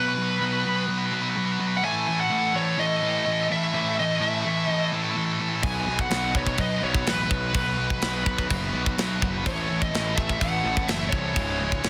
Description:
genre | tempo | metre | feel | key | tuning
heavy metal | 126 BPM | 4/4 | straight | unclear | A4 = 441 Hz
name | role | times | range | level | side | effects
high-gain lead guitar | melody | 0.0-11.9 s | B4 to G#5 | -30 LUFS | equal | distortion, tape echo
heavy high-gain guitar | riff | 0.0-11.9 s | G#3 to B4 | -33 LUFS | equal | distortion
heavy high-gain guitar | riff | 0.0-11.9 s | C#2 to B3 | -35 LUFS | equal | distortion
sludgy distorted guitar | riff | 0.0-11.9 s | C#2 to B3 | -32 LUFS | equal | overdrive
fuzz picked electric bass | bass | 5.6-11.9 s | C#1 to B#1 | -33 LUFS | equal | overdrive
tight metal drum kit | drums | 5.6-11.9 s | crash cymbal, kick drum, snare drum | -29 LUFS | equal | soft clipping on kick
room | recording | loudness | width
small room ambience | dense, heavily limited modern master | -25 LUFS | mono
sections
0.0-11.9 A section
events
none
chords
0.0 B5; 1.8 A5; 5.6 B5; 9.4 A5; 11.4 C#m

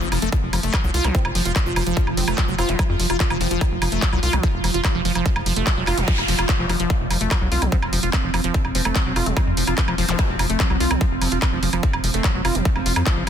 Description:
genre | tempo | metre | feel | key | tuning
psychedelic trance | 146 BPM | 4/4 | straight | F major | A4 = 439 Hz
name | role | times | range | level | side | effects
pulsing gated texture | sustained chords | 0.0-13.3 s | F3 to F4 | -27 LUFS | right 2 dB | chorus, built-in reverb, sidechain pumping
liquid acid bass | riff | 0.0-13.3 s | F3 to F4 | -26 LUFS | moving between left 8 dB and right 7 dB | chorus, auto-pan, sidechain pumping, dub echo
tight sequencer bass | bass | 0.0-13.3 s | F1 to F2 | -24 LUFS | equal | none
big-room dance drum kit | drums | 0.1-13.3 s | handclaps, hi-hat, woodblock | -25 LUFS | right 1 dB | overdrive, studio reverb
electronic kick drum | drums | 0.3-13.1 s | none | -22 LUFS | equal | overdrive, studio reverb
resonant blip pluck | second line | 1.1-3.7, 7.7-10.2 s | A3 to F4 | -35 LUFS | left 1 dB | chorus, phaser, sidechain pumping, high-pass filter, tape echo
noise sweep and zap | sound effects | 5.5-6.9, 10.1-10.2 s | none | -29 LUFS | equal | none
room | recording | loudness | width
little or no reverb | dense, heavily limited modern master | -18 LUFS | side -9 dB against mid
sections
0.0-13.3 A section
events
noise sweep 5.5-6.9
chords
0.0 F5

